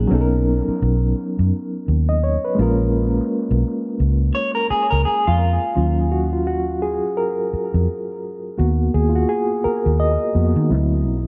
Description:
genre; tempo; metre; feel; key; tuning
R&B, neo-soul; 85 BPM; 4/4; swing 60% on 16ths; Eb minor; A4 = 438 Hz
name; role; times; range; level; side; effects
mellow reed electric piano; accompaniment; 0.0-11.3 s; Gb3 to D#5; -23 LUFS; equal; fast tremolo, analog delay
vintage muted fingered electric bass; bass; 0.0-11.3 s; Bb1 to Eb3; -21 LUFS; equal; none
electric guitar through a small old amp; second line; 4.3-5.7 s; F4 to Db5; -23 LUFS; equal; analog delay
room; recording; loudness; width
light reverb, digital ambience; echo-heavy mix; -19 LUFS; mono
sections
0.0-5.8 A section; 5.8-11.3 B section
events
reed electric piano solo 5.8-11.3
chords
0.1 Bmaj9; 2.6 Bbm7; 5.8 Ebm9; 8.6 Abm13/Eb; 10.7 D9

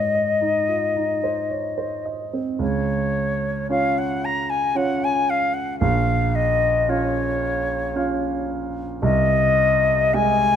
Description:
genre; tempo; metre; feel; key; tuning
classical, romantic duo for flute and grand piano; 56 BPM; 3/4; rubato; Db major; A4 = 441 Hz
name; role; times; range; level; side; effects
silver concert flute; melody; 0.0-10.6 s; Db5 to Bb5; -21 LUFS; left 3 dB; none
dark concert grand piano; accompaniment; 0.0-10.6 s; Bb1 to F5; -23 LUFS; right 3 dB; none
room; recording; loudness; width
moderate concert hall reverb, RT60 2.0 s; close, detailed microphones; -19 LUFS; side -9 dB against mid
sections
0.0-2.6 A section; 2.6-10.6 B section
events
none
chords
0.0 Ab; 2.6 Db; 5.8 Bbm; 9.0 Ab/C

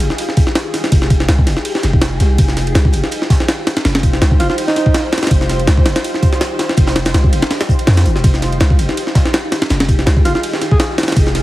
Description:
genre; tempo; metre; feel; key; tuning
drum and bass, jungle; 164 BPM; 4/4; swing 54% on 16ths; F minor; A4 = 439 Hz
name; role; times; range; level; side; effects
granular cloud pad; sustained chords; 0.0-11.4 s; Eb4 to C5; -22 LUFS; equal; built-in reverb, vintage 12-bit sampler grit
long sustained 808-style bass; bass; 0.0-11.4 s; Eb1 to F2; -15 LUFS; equal; none
crunchy breakbeat drum kit; drums; 0.0-11.4 s; hi-hat, snare drum; -30 LUFS; right 2 dB; high-pass filter on hats, small room ambience, high-pass filter on snare, high-pass filter on room
jungle sampler-style drum kit; drums; 0.0-11.4 s; kick drum, ride cymbal, snare drum; -14 LUFS; equal; small room ambience
breathy alto saxophone; melody; 4.4-5.0, 10.2-10.9 s; Eb4 to Ab4; -22 LUFS; right 1 dB; dub echo
room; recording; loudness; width
light reverb, studio ambience; heavily compressed radio sound, vinyl crackle; -12 LUFS; side -16 dB against mid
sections
0.0-11.4 A section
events
none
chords
0.0 Fm9

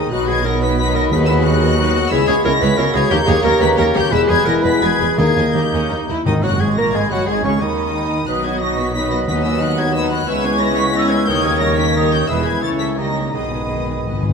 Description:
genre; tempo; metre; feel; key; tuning
classical, dramatic, fast romantic movement for symphony orchestra; 163-185 BPM; 3/4; rubato; G# minor; A4 = 439 Hz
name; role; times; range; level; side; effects
rich symphonic violin section; melody; 0.0-14.2 s; C#6 to B6; -23 LUFS; left 5 dB; none
clear clarinet; second line; 0.0-14.2 s; C#4 to B4; -24 LUFS; equal; none
clear oboe; second line; 0.0-14.2 s; B4 to A#5; -29 LUFS; right 1 dB; none
mellow hollow flute section; second line; 0.0-14.2 s; D#5 to E6; -25 LUFS; right 1 dB; none
rich symphonic violin section; second line; 0.0-14.3 s; C#4 to E5; -27 LUFS; left 3 dB; none
rich symphonic viola section; accompaniment; 0.0-14.3 s; C#3 to G#4; -27 LUFS; right 1 dB; none
warm bassoon; accompaniment; 0.0-14.2 s; C#3 to A#3; -26 LUFS; right 1 dB; none
dark French horn section; sustained chords; 0.0-14.3 s; C#3 to A#4; -22 LUFS; left 6 dB; none
mellow trombone section; sustained chords; 0.0-14.2 s; B2 to B3; -26 LUFS; right 4 dB; none
dark symphonic cello section; bass; 0.0-14.2 s; C#2 to C#3; -24 LUFS; right 4 dB; none
rich symphonic double bass section; bass; 0.0-14.2 s; E1 to D#2; -23 LUFS; right 4 dB; none
timpani; percussion; 1.1-1.6, 5.2-6.7, 9.3-9.7, 13.3-14.3 s; G#2 to D#3; -22 LUFS; left 1 dB; none
room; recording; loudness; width
wet concert hall reverb, RT60 2.0 s; none; -14 LUFS; side -5 dB against mid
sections
0.0-6.3 A section; 6.3-14.3 A section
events
timpani fill 13.3-14.3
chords
0.1 B; 1.1 B/D#; 2.1 C#m7; 3.1 D#7; 4.1 E; 5.2 D#; 6.3 G#m; 8.3 B; 9.3 B/D#; 10.3 C#m7; 11.3 D#7; 12.3 E; 12.6 A/C#; 13.0 D#7/C#; 13.3 G#m/B

